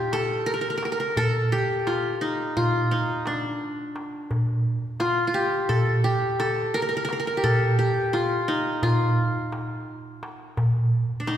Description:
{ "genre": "Turkish makam ensemble", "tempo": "172 BPM (eighths)", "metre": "9/8", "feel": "straight", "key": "unclear", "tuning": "A4 = 441 Hz", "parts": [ { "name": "qanun", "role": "melody", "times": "0.0-11.4 s", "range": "D4 to Bb4", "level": "-24 LUFS", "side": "equal", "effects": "none" }, { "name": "darbuka", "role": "percussion", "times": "0.1-11.4 s", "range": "none", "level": "-26 LUFS", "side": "equal", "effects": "none" } ], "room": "wet concert hall reverb, RT60 2.1 s", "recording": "recorded in a church or concert hall", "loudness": "-22 LUFS", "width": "side -10 dB against mid", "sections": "0.0-4.3 A section; 4.3-11.4 A section", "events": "none", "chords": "none" }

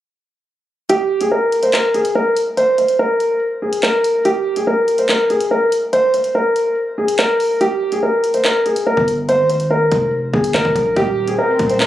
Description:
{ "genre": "hip hop, drill", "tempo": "143 BPM", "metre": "4/4", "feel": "half-time", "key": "unclear", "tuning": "A4 = 436 Hz", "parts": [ { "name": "dark concert grand piano", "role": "melody", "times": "0.9-11.9 s", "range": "G4 to C5", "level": "-14 LUFS", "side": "equal", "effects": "ping-pong delay" }, { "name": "drill drum kit", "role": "drums", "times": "0.9-11.9 s", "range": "handclaps, hi-hat, kick drum", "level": "-22 LUFS", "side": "equal", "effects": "none" }, { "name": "long sustained 808-style bass", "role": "bass", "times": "9.0-11.9 s", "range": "Eb1 to Bb1", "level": "-22 LUFS", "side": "equal", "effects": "none" }, { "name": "swell", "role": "sound effects", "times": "11.3-11.9 s", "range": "none", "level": "-24 LUFS", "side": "right 2 dB", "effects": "none" } ], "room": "light reverb", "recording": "recorded on a phone in the room, studio ambience, compression", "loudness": "-14 LUFS", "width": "side -13 dB against mid", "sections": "0.9-11.9 A section", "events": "kick muted 0.9-7.6, 7.6-8.4; swell 11.3-11.9", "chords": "0.9 N.C.; 7.6 Gm7; 11.0 Eb" }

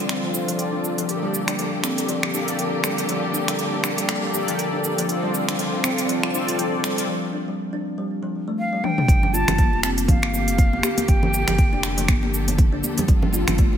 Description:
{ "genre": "afro house", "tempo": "120 BPM", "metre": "4/4", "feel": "swing 57% on 16ths", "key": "G minor", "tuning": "A4 = 440 Hz", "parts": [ { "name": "rich symphonic string section", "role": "sustained chords", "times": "0.0-13.8 s", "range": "D3 to A4", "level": "-31 LUFS", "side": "equal", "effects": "vintage 12-bit sampler grit, sidechain pumping" }, { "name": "kalimba", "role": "arpeggios", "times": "0.0-13.7 s", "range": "D3 to G4", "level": "-26 LUFS", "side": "left 1 dB", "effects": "vintage 12-bit sampler grit, sidechain pumping, low-pass filter, digital delay" }, { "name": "mellow synth brass", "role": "stabs", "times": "0.0-7.1 s", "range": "Bb3 to D5", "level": "-26 LUFS", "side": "left 1 dB", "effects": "chorus, sidechain pumping, digital delay" }, { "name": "round analog bass", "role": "bass", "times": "0.0-13.8 s", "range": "F1 to G1", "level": "-30 LUFS", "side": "equal", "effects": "none" }, { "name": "deep house drum kit", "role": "drums", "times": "0.1-13.7 s", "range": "finger snaps, hi-hat, shaker, toms", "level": "-26 LUFS", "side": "equal", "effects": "none" }, { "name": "jazz flute", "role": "melody", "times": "8.6-12.1 s", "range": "F5 to A5", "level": "-26 LUFS", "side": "right 2 dB", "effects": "digital delay" }, { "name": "electronic kick drum", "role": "drums", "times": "9.1-13.7 s", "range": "none", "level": "-18 LUFS", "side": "equal", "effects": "none" }, { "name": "congas", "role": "percussion", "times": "9.2-13.8 s", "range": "none", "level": "-27 LUFS", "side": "right 1 dB", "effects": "none" } ], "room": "moderate lush hall reverb, RT60 2.0 s", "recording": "none", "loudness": "-19 LUFS", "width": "side -9 dB against mid", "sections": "0.0-9.1 A section; 9.1-13.8 B section", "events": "build-up 0.0-9.1; filter sweep on analog polysynth 0.0-9.1; break 7.1-9.1; drum fill 8.8; drop 9.1-13.8", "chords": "0.0 Dm7; 1.1 Gmadd9; 5.1 Dm7; 9.1 Gmadd9; 13.1 Dm7" }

